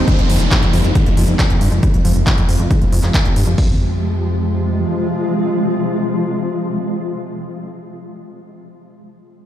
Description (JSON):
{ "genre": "uplifting trance", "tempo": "137 BPM", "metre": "4/4", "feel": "straight", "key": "F minor", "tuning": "A4 = 439 Hz", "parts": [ { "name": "shimmering ambient pad", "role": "sustained chords", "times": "0.0-7.1 s", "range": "C3 to F4", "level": "-21 LUFS", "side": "left 1 dB", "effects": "chorus, built-in reverb, sidechain pumping" }, { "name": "plucky analog bass", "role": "bass", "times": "0.0-4.9 s", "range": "F1 to G2", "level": "-17 LUFS", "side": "equal", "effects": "sidechain pumping" }, { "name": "big-room dance drum kit", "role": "drums", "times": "0.1-3.6 s", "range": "handclaps, hi-hat", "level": "-24 LUFS", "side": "equal", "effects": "overdrive, sidechain pumping on hats, sidechain pumping on cymbals" }, { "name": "punchy analog drum machine", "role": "drums", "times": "0.1-3.7 s", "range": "hi-hat, kick drum", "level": "-15 LUFS", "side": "equal", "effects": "none" }, { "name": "downlifter", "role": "sound effects", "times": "0.1-3.6 s", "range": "none", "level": "-27 LUFS", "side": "equal", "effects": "none" } ], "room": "light reverb", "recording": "played on a big sound system in a bare room, stone room reverb", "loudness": "-14 LUFS", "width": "side -11 dB against mid", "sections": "0.1-3.6 A section; 3.6-7.1 B section", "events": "none", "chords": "0.1 Fm", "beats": "| 0.08 0.51 0.95 1.39 | 1.83 2.27 2.70 3.14 | 3.58 4.02 4.46 4.89 | 5.33 5.77 6.21 6.65" }